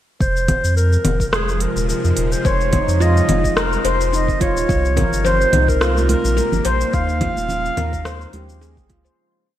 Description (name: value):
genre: organic downtempo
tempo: 107 BPM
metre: 4/4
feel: swing 55% on 16ths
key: F minor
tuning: A4 = 438 Hz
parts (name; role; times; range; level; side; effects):
- mellow clarinet; melody; 0.2-8.6 s; Ab4 to F5; -22 LUFS; right 1 dB; digital delay
- bowed-like drone; sustained chords; 0.8-9.2 s; C3 to Ab4; -26 LUFS; right 1 dB; built-in reverb, sidechain pumping
- warm sub bass; bass; 0.2-9.1 s; Eb1 to F2; -20 LUFS; equal; sidechain pumping
- electronic kick drum; drums; 0.2-9.0 s; none; -21 LUFS; equal; none
- organic electronic drum kit; drums; 0.2-9.2 s; congas, hi-hat, rim click, shaker; -24 LUFS; left 1 dB; gated reverb
- handpan; arpeggios; 2.4-9.2 s; Eb4 to C5; -22 LUFS; left 2 dB; digital delay
- congas; percussion; 4.7-8.9 s; none; -28 LUFS; right 3 dB; none
room: moderate lush hall reverb, RT60 2.3 s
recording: bright 1980s-style digital production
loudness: -15 LUFS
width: side -12 dB against mid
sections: 0.2-9.2 groove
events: fade-out 6.2-9.2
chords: 0.2 Fm7; 4.7 Cm7; 6.9 Eb9sus4